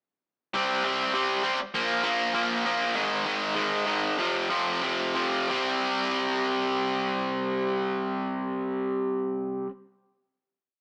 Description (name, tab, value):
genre	punk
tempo	170-200 BPM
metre	4/4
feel	straight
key	unclear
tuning	A4 = 438 Hz
part	distorted electric guitar	solo	0.5-9.7 s	F2 to C4	-27 LUFS	equal	overdrive
room	moderate stone room reverb, RT60 1.1 s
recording	rough rehearsal-room recording, warm saturation, small speaker sound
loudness	-27 LUFS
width	mono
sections	0.5-5.5 riff; 5.5-8.3 final chord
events	slowing down 3.0-5.5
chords	0.5 C5; 1.6 Bb5; 3.0 Ab5; 4.2 F5; 5.5 C5